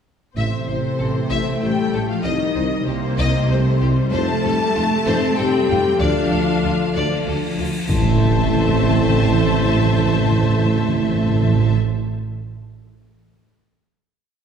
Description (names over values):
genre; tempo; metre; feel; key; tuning
cinematic, epic orchestral film score; 96 BPM; 3/4; straight; A minor; A4 = 440 Hz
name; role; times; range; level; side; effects
warm symphonic violin section; melody; 0.4-11.7 s; F4 to E5; -28 LUFS; left 5 dB; none
warm symphonic violin section; second line; 0.4-11.7 s; C5 to A5; -28 LUFS; left 4 dB; none
mellow French horn section; sustained chords; 0.4-11.7 s; C4 to A4; -26 LUFS; left 4 dB; none
warm trombone section; sustained chords; 0.4-11.7 s; C3 to C4; -27 LUFS; right 2 dB; none
rich symphonic double bass section; bass; 0.4-11.7 s; A1 to F2; -23 LUFS; right 3 dB; none
warm symphonic cello section; bass; 0.4-11.7 s; C3 to A3; -24 LUFS; right 1 dB; none
warm tuba; bass; 0.4-11.7 s; F1 to D2; -25 LUFS; right 2 dB; none
timpani; percussion; 0.4-1.3, 7.9-11.7 s; A2; -22 LUFS; right 1 dB; none
warm symphonic viola section; accompaniment; 1.0-11.7 s; E3 to C5; -25 LUFS; left 3 dB; none
cymbal swell and impact; sound effects; 7.2-9.8 s; none; -26 LUFS; left 1 dB; none
room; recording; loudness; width
wet scoring stage reverb, RT60 1.7 s; heard from further back in the room; -16 LUFS; side -7 dB against mid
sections
0.4-7.9 theme; 7.9-11.7 final chord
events
cymbal swell 7.2-7.9; impact 7.9-9.8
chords
0.4 Am; 2.2 Cm; 4.1 F; 6.0 Dm; 7.9 Am